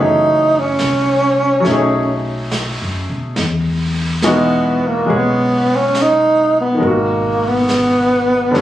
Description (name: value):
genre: jazz ballad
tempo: 70 BPM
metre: 4/4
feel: swing 67% on 8ths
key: G# minor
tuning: A4 = 440 Hz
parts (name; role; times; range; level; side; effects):
- breathy tenor saxophone; melody; 0.0-8.6 s; A#3 to D#4; -14 LUFS; right 1 dB; none
- bright upright piano; accompaniment; 0.0-8.6 s; B2 to A#4; -19 LUFS; left 2 dB; none
- upright bass; bass; 0.0-8.6 s; F#1 to B2; -22 LUFS; left 1 dB; none
- vintage brush drum kit; drums; 0.8-8.6 s; brushed snare drum, hi-hat, snare drum; -25 LUFS; right 1 dB; none
room: light reverb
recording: recorded on a phone in the room, studio reverb, compression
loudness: -13 LUFS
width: side -13 dB against mid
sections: 0.0-8.6 A section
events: none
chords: 0.0 F#m7; 1.6 B13; 3.4 Emaj9; 6.8 G#m9